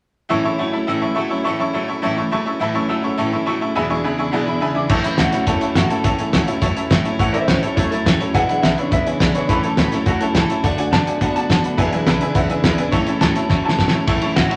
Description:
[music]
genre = rockabilly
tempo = 209 BPM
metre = 4/4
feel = straight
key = A major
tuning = A4 = 441 Hz
[part]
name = picked steel-string acoustic guitar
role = accompaniment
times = 0.3-14.6 s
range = E2 to F#4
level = -24 LUFS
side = equal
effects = none
[part]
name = tack piano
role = accompaniment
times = 0.3-14.6 s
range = B4 to E6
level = -27 LUFS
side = equal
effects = none
[part]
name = clean electric guitar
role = riff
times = 0.3-14.6 s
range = E2 to B3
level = -27 LUFS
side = equal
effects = phaser
[part]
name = upright bass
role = bass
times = 4.9-14.5 s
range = E1 to B2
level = -30 LUFS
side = equal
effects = none
[part]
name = cloth-damped thuddy drum kit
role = drums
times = 4.9-14.6 s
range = crash cymbal, hi-hat, kick drum, ride cymbal, snare drum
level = -21 LUFS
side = equal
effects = none
[part]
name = electric guitar through a small old amp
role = melody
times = 5.2-14.6 s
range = F#4 to A5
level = -25 LUFS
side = equal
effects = vibrato effect
[sound]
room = wet large studio reverb, RT60 0.9 s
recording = none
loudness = -18 LUFS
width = mono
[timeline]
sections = 0.3-4.9 A section; 4.9-14.1 B section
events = drum fill 13.5-14.1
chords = 0.3 A; 3.8 E7; 4.9 A; 8.3 E7; 9.5 A; 10.6 D; 11.8 E7; 12.9 A

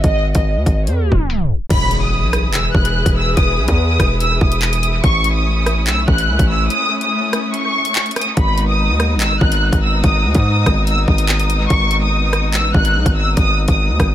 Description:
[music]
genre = hip hop, drill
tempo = 144 BPM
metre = 4/4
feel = half-time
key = G# phrygian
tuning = A4 = 439 Hz
[part]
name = dark symphonic violin section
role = melody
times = 0.0-14.1 s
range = C#5 to F#6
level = -19 LUFS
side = equal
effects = low-pass filter, dub echo
[part]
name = distorted 808-style bass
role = bass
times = 0.0-14.1 s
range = E1 to G#2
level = -17 LUFS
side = equal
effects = distortion
[part]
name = drill drum kit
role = drums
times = 0.0-14.1 s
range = crash cymbal, handclaps, hi-hat, kick drum, rim click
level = -18 LUFS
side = equal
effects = none
[part]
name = clear symphonic string section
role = sustained chords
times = 1.7-14.1 s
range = E3 to B4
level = -23 LUFS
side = left 1 dB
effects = none
[part]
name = impact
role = sound effects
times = 1.7-3.4 s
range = none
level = -25 LUFS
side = left 1 dB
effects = none
[sound]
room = little or no reverb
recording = echo-heavy mix, tape stop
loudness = -13 LUFS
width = side -12 dB against mid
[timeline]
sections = 0.0-1.7 A section; 1.7-14.1 B section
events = tape stop 0.9-1.7; impact 1.7-3.4; break 6.7-8.4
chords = 0.0 G#5; 1.7 E; 5.0 A; 8.4 G#m

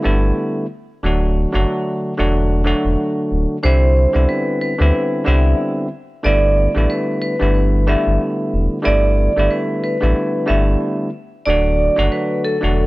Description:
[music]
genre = hip hop, boom-bap hip-hop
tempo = 92 BPM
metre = 4/4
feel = swing 57% on 16ths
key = G major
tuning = A4 = 443 Hz
[part]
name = barky tine electric piano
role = accompaniment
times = 0.0-12.9 s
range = D3 to F#4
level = -19 LUFS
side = equal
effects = cassette tape, high-pass filter, low-pass filter
[part]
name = sub bass with octave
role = bass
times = 0.1-12.9 s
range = D1 to D2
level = -16 LUFS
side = equal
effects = transformer saturation
[part]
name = vibraphone with hard mallets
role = melody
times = 3.6-12.9 s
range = A4 to E5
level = -19 LUFS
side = right 1 dB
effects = high-pass filter, low-pass filter, analog delay
[sound]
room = small room ambience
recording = dry, gritty hardware recording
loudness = -15 LUFS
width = side -20 dB against mid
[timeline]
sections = 0.0-12.9 A section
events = break 0.0-3.6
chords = 0.0 G6; 1.0 D; 3.6 Cmaj7; 6.2 G6; 11.5 D

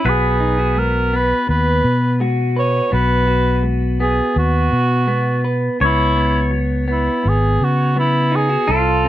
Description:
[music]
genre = acoustic folk-pop ballad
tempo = 83 BPM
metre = 4/4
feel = straight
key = G# minor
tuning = A4 = 440 Hz
[part]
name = mellow cor anglais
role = melody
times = 0.0-9.1 s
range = E4 to C#5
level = -19 LUFS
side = right 2 dB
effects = none
[part]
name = pedal steel guitar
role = second line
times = 0.0-9.1 s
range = F4 to C#5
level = -23 LUFS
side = left 1 dB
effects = none
[part]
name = electric guitar through a small old amp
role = accompaniment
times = 0.0-9.1 s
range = G#2 to B4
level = -21 LUFS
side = equal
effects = spring reverb
[part]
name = fingered electric bass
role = bass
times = 0.0-9.1 s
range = G#1 to C#3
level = -18 LUFS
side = equal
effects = none
[sound]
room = little or no reverb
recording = close, detailed microphones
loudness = -14 LUFS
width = side -13 dB against mid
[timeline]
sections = 0.0-9.1 A section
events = none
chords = 0.0 G#m7/B; 5.8 C#7sus4

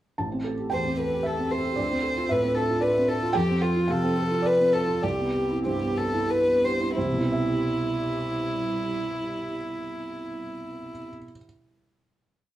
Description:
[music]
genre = neoclassical piano and strings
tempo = 89-115 BPM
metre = 3/4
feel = rubato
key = C major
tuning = A4 = 440 Hz
[part]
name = felt-muted upright piano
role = accompaniment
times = 0.2-11.4 s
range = A1 to A5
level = -27 LUFS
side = right 1 dB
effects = none
[part]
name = hollow soft pad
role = sustained chords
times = 0.2-11.1 s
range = G3 to A4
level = -38 LUFS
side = right 1 dB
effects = none
[part]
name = warm violin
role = melody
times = 0.7-11.1 s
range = E4 to C5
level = -26 LUFS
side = left 1 dB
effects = none
[sound]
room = moderate studio reverb, RT60 0.6 s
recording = rough home demo mix, small room ambience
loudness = -23 LUFS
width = side -13 dB against mid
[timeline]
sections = 0.2-7.0 theme; 7.0-10.9 final chord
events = slowing down 2.6-7.0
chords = 0.2 Am7; 1.8 Dm7; 3.3 F; 5.0 Cmaj7

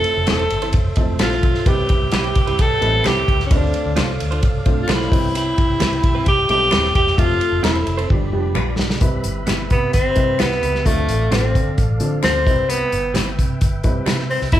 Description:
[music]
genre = uptempo 1960s-style soul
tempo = 131 BPM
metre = 4/4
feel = straight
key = C major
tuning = A4 = 440 Hz
[part]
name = mellow tenor saxophone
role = melody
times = 0.0-14.6 s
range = A3 to A4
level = -19 LUFS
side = equal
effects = none
[part]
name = dark upright piano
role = accompaniment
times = 0.0-14.6 s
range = C3 to E5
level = -28 LUFS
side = equal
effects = none
[part]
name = tonewheel organ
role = sustained chords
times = 0.0-14.6 s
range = C4 to E6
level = -31 LUFS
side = right 2 dB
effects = slow rotary speaker
[part]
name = warm soul drum kit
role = drums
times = 0.0-14.6 s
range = hi-hat, kick drum, ride cymbal, snare drum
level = -19 LUFS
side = equal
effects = none
[part]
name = vintage muted fingered electric bass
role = bass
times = 0.2-14.6 s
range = Eb1 to D3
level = -22 LUFS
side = equal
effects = none
[part]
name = direct-recorded clean electric guitar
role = stabs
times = 0.3-14.2 s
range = G3 to C5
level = -28 LUFS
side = right 3 dB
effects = none
[part]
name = finger snap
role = percussion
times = 0.3-14.2 s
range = none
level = -31 LUFS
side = left 5 dB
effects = none
[sound]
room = moderate large studio reverb, RT60 1.3 s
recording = band playing live in one room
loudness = -15 LUFS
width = side -12 dB against mid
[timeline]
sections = 0.0-9.0 A section; 9.0-14.6 B section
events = drum fill 8.1-9.0; tenor saxophone solo 9.0-14.6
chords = 0.0 Fmaj7; 1.7 Cmaj7; 3.5 Dm7; 5.1 Cmaj7; 7.2 Fmaj7; 8.1 G7; 9.0 Cmaj7; 10.9 Dm7; 12.5 Cmaj7

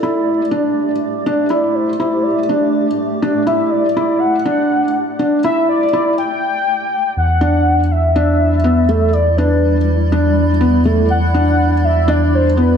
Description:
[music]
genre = piano and strings electronica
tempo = 122 BPM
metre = 4/4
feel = straight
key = E minor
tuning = A4 = 441 Hz
[part]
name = warm velvety synth lead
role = melody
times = 0.0-12.8 s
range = A4 to G5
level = -19 LUFS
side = left 1 dB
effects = chorus, ping-pong delay
[part]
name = granular cloud pad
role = sustained chords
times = 0.0-12.8 s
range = G3 to D5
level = -23 LUFS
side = right 1 dB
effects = built-in reverb
[part]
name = felt-muted upright piano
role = riff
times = 0.0-12.8 s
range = A3 to E4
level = -16 LUFS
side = equal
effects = ping-pong delay
[part]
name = round analog bass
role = bass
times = 7.2-12.8 s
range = E2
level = -15 LUFS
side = equal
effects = tube saturation
[sound]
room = moderate echo chamber reverb, RT60 2.2 s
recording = none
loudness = -13 LUFS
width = side -7 dB against mid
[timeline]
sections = 0.0-7.2 A section; 7.2-12.8 B section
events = build-up 0.0-7.2; filter sweep on soft synth lead 0.0-7.2; break 6.2-7.2; drop 7.2-12.8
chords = 0.0 Dsus4; 7.2 Em7

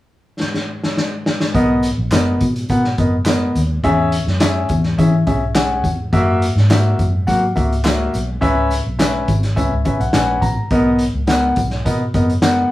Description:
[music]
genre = uptempo 1960s-style soul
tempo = 105 BPM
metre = 4/4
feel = straight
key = B major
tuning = A4 = 439 Hz
[part]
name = vintage drum kit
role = drums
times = 0.4-12.6 s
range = hi-hat, kick drum, snare drum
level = -20 LUFS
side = equal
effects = none
[part]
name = warm concert grand piano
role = accompaniment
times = 1.5-12.7 s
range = A#3 to A#5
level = -18 LUFS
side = left 1 dB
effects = none
[part]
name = vintage muted fingered electric bass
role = bass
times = 1.5-12.6 s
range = F#1 to F#3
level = -18 LUFS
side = equal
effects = none
[part]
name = tambourine and handclaps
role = percussion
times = 1.8-12.6 s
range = none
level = -29 LUFS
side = right 1 dB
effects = none
[sound]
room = moderate studio ambience, RT60 0.5 s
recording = band playing live in one room, small room ambience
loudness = -14 LUFS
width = side -16 dB against mid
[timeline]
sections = 0.0-1.5 A section; 1.5-12.7 B section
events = drum fill 0.4-1.5; grand piano fill 9.6-10.7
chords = 0.0 N.C.; 1.5 Bmaj7; 3.8 E6; 6.1 F#7; 8.4 C#m7; 10.7 Bmaj7

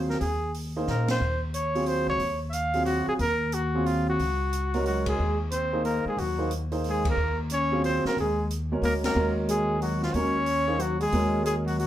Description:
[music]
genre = modal jazz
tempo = 181 BPM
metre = 3/4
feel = swing 64% on 8ths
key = Eb dorian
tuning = A4 = 440 Hz
[part]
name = clear baby grand piano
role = accompaniment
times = 0.0-11.9 s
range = Gb3 to C5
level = -29 LUFS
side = right 2 dB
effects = none
[part]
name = upright bass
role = bass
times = 0.0-11.9 s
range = Db2 to Bb2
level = -29 LUFS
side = equal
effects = none
[part]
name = breathy trumpet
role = melody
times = 0.1-11.9 s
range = F4 to F5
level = -28 LUFS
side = equal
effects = none
[part]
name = open jazz drum kit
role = drums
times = 0.1-11.9 s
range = hi-hat, kick drum, ride cymbal, snare drum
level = -37 LUFS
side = equal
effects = none
[part]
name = brilliant trombone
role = second line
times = 4.9-11.9 s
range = F3 to Db4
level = -32 LUFS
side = left 3 dB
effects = none
[sound]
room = wet club reverb, RT60 0.5 s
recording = heard from further back in the room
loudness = -24 LUFS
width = side -12 dB against mid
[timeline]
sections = 0.0-11.9 A section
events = drum fill 0.9-1.2; band accent 1.0, 5.0, 7.0, 9.0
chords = 0.0 Gb/Eb; 1.2 Ebm11; 3.2 Gb/Eb; 5.2 Ebmadd11; 7.2 Gb/Eb; 9.2 Ebm7; 11.1 Gb/Eb

